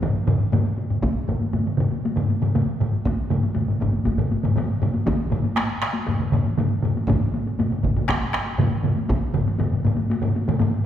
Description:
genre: japanese traditional, taiko drum ensemble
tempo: 119 BPM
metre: 4/4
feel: straight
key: none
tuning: none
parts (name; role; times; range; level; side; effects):
- taiko ensemble; percussion; 0.0-10.7 s; none; -27 LUFS; left 2 dB; none
- taiko ensemble; percussion; 0.0-10.7 s; none; -24 LUFS; left 2 dB; none
- taiko ensemble; percussion; 0.0-10.7 s; none; -25 LUFS; right 3 dB; none
- taiko ensemble; percussion; 1.0-9.2 s; none; -28 LUFS; right 1 dB; none
room: wet scoring stage reverb, RT60 1.7 s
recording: recorded in a church or concert hall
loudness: -20 LUFS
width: side -10 dB against mid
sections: 0.0-1.0 A section; 1.0-10.9 B section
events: none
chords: none

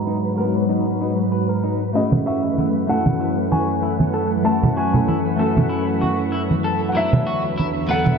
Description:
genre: sunset chillout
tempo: 96 BPM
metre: 4/4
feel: straight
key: F# dorian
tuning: A4 = 440 Hz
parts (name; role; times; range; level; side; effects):
- dark baby grand piano; melody; 0.0-8.2 s; D#5 to A#5; -26 LUFS; equal; digital delay
- nylon-string guitar; accompaniment; 0.0-8.2 s; F#3 to A#5; -24 LUFS; moving between left 4 dB and right 4 dB; auto-pan, low-pass filter, digital delay
- soft string machine; sustained chords; 0.0-8.2 s; E2 to F#5; -22 LUFS; equal; phaser, ensemble chorus
- twinkling granular texture; texture; 0.0-8.2 s; B4; -34 LUFS; right 3 dB; built-in reverb
- electric guitar at the edge of break-up; arpeggios; 0.1-8.0 s; D#4 to B4; -28 LUFS; left 2 dB; lush chorus, low-pass filter, digital delay
- congas; percussion; 2.1-8.2 s; none; -20 LUFS; right 2 dB; none
room: moderate lush hall reverb, RT60 2.6 s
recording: dark, warm production, low-pass filter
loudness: -17 LUFS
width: side -6 dB against mid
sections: 0.0-8.2 A section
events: filter sweep on nylon-string guitar 0.0-8.2; filter sweep on clean electric guitar 0.0-8.2; filter sweep 0.0-8.2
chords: 0.0 G#m9; 2.0 F#m9; 7.0 Esus2

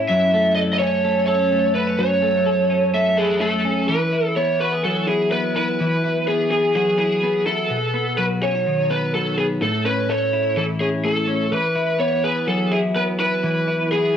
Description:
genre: indie pop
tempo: 126 BPM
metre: 4/4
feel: straight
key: E major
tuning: A4 = 436 Hz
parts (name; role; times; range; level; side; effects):
- twelve-string electric guitar; arpeggios; 0.0-14.2 s; F#2 to A4; -22 LUFS; left 1 dB; lush chorus
- lead guitar through a small cranked amp; melody; 0.1-14.1 s; G#4 to E5; -20 LUFS; right 1 dB; overdrive, plate reverb
room: moderate studio reverb, RT60 0.8 s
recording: worn, warbling old tape, cassette tape, warbly pitch drift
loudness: -17 LUFS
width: side -8 dB against mid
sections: 0.0-3.9 A section; 3.9-14.2 B section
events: none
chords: 0.1 F#m7; 3.9 Eadd9; 7.7 B; 9.6 A; 11.5 Eadd9

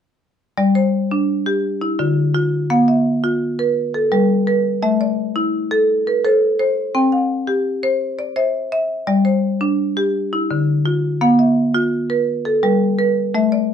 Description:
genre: southern african traditional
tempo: 113 BPM (dotted quarters)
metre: 12/8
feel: straight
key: G equiheptatonic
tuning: A4 = 444 Hz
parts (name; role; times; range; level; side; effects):
- marimba with medium hard mallets; arpeggios; 0.6-13.7 s; D3 to G5; -15 LUFS; equal; none
room: light reverb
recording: dark, warm production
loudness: -15 LUFS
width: side -8 dB against mid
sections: 0.6-13.7 A section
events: none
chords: 0.6 G5; 1.6 Dm; 2.7 Bb5; 3.8 Gm; 4.8 Am; 6.9 C; 9.1 G5; 10.1 Dm; 11.2 Bb5; 12.3 Gm

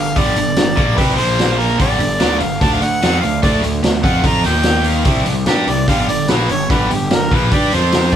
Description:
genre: blues rock power trio and southern rock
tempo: 147 BPM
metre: 4/4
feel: straight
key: unclear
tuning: A4 = 440 Hz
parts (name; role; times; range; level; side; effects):
- clear harmonica; melody; 0.0-8.2 s; G4 to Bb5; -19 LUFS; right 1 dB; overdrive
- tight distorted guitar; riff; 0.0-8.1 s; G2 to G4; -19 LUFS; right 1 dB; distortion
- fuzz picked electric bass; bass; 0.0-8.2 s; G1 to G2; -19 LUFS; equal; overdrive
- vintage drum kit; drums; 0.2-8.2 s; hi-hat, kick drum, snare drum; -17 LUFS; equal; none
room: light reverb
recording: band playing live in one room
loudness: -13 LUFS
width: side -9 dB against mid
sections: 0.0-8.2 A section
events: none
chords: 0.0 G5; 1.2 Bb5; 1.8 G5; 2.6 D7; 4.2 Fsus4; 4.4 Eb5; 5.1 C5; 5.9 G5; 7.7 F5

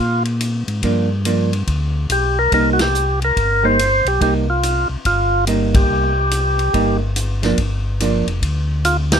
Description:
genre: soul jazz organ trio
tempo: 142 BPM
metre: 4/4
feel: swing 64% on 8ths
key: unclear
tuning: A4 = 442 Hz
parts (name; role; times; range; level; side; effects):
- percussive tonewheel organ; melody; 0.0-9.2 s; F4 to C5; -17 LUFS; equal; slow rotary speaker
- mellow tonewheel organ; bass; 0.0-9.2 s; F1 to Bb2; -20 LUFS; equal; chorus vibrato, slow rotary speaker
- vintage drum kit; drums; 0.3-9.2 s; hi-hat, kick drum, ride cymbal, snare drum; -23 LUFS; left 1 dB; none
- vintage hollow-body jazz guitar; accompaniment; 0.8-8.3 s; F3 to Eb4; -19 LUFS; right 3 dB; none
room: little or no reverb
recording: close, detailed microphones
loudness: -15 LUFS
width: side -8 dB against mid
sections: 0.0-9.2 A section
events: band accent 2.7, 5.7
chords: 0.0 Gm7; 2.5 Cm7; 7.6 Gm7

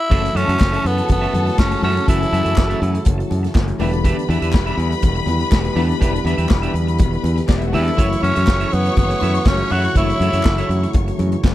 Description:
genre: disco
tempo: 122 BPM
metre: 4/4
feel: straight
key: unclear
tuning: A4 = 440 Hz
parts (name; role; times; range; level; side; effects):
- raspy tenor saxophone; melody; 0.0-3.0, 7.7-10.9 s; B3 to F#4; -21 LUFS; equal; none
- clean electric guitar; accompaniment; 0.0-11.5 s; C#4 to E5; -27 LUFS; right 6 dB; none
- clear studio string section; second line; 0.1-11.4 s; D4 to C#6; -27 LUFS; left 5 dB; none
- tine electric piano; accompaniment; 0.1-11.5 s; C#3 to E4; -26 LUFS; left 3 dB; overdrive, fast stereo tremolo
- mellow French horn section; sustained chords; 0.1-11.5 s; C#3 to G4; -27 LUFS; right 2 dB; stereo widening
- modern bright fingered electric bass; bass; 0.1-11.5 s; E1 to F#2; -20 LUFS; equal; none
- vintage drum kit; drums; 0.1-11.5 s; crash cymbal, hi-hat, kick drum, snare drum; -16 LUFS; equal; none
- congas; percussion; 0.6-11.5 s; none; -27 LUFS; left 5 dB; none
- group handclap; percussion; 0.6-11.5 s; none; -32 LUFS; left 3 dB; none
room: little or no reverb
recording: dry, close 1970s-style studio recording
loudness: -15 LUFS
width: side -14 dB against mid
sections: 0.1-11.5 A section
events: none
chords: 0.1 F#m7; 3.8 Em7; 8.0 F#m7

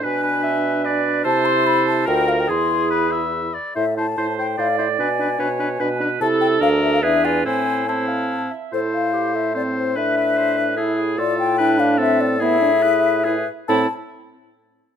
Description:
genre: quick classical-period movement for wind quintet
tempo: 145 BPM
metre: 3/4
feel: straight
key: A minor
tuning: A4 = 440 Hz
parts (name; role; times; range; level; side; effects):
- mellow hollow concert flute; melody; 0.0-13.9 s; C5 to C6; -21 LUFS; left 7 dB; none
- clear oboe; second line; 0.0-13.9 s; E4 to E5; -25 LUFS; left 2 dB; none
- warm French horn; accompaniment; 0.0-13.9 s; B3 to F4; -24 LUFS; equal; none
- warm clarinet; accompaniment; 0.0-13.9 s; D4 to F5; -23 LUFS; right 8 dB; none
- dark bassoon; bass; 0.0-13.9 s; D2 to C3; -25 LUFS; right 3 dB; none
room: light reverb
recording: close, detailed microphones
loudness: -17 LUFS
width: side -8 dB against mid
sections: 0.0-8.7 A section; 8.7-13.7 B section; 13.7-15.0 C section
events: none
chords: 0.0 G#dim/B; 1.3 Am/C; 2.1 Bb/D; 2.5 E; 3.8 Am; 5.0 G#dim/B; 6.2 Am/C; 6.6 Bb/D; 7.0 E7; 7.5 Am; 10.0 E7/A; 11.2 Dm/A; 12.4 E/A; 13.7 Am

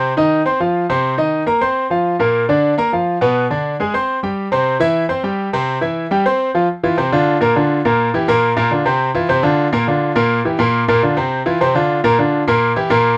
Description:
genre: latin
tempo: 207 BPM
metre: 4/4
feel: straight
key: unclear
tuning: A4 = 440 Hz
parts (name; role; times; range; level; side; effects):
- bright concert grand piano; solo; 0.0-13.1 s; Bb2 to C6; -16 LUFS; equal; none
room: little or no reverb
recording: none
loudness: -16 LUFS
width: mono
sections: 0.0-6.7 A section; 6.7-13.2 B section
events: none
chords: 0.0 Cmadd11; 0.9 Cm; 1.5 Fsus4; 2.1 Bb; 3.2 Bm; 3.8 Abmaj7; 4.4 C; 6.7 F5; 7.3 Bb; 7.8 Edim/Bb; 8.4 Bb; 9.0 F5; 9.6 Bb; 10.2 Edim/Bb; 10.7 Bb; 11.3 F5; 11.9 Bb; 12.5 Edim/Bb

